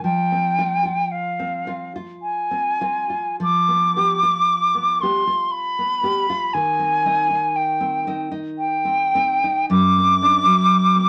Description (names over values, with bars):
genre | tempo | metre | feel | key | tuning
romantic duo for flute and classical guitar | 49-60 BPM | 3/4 | rubato | C minor | A4 = 441 Hz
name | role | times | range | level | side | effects
silver concert flute | melody | 0.0-11.1 s | F5 to D6 | -20 LUFS | equal | none
nylon-string guitar | accompaniment | 0.0-11.1 s | F#2 to G4 | -27 LUFS | equal | none
room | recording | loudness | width
moderate studio reverb, RT60 0.6 s | none | -20 LUFS | mono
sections
0.0-11.1 A section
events
none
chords
0.0 Fm; 3.4 G7/F; 6.6 Cm/Eb; 9.7 D7/F#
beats
| 0.04 1.13 2.22 | 3.40 4.50 5.53 | 6.55 7.57 8.59 | 9.70 10.72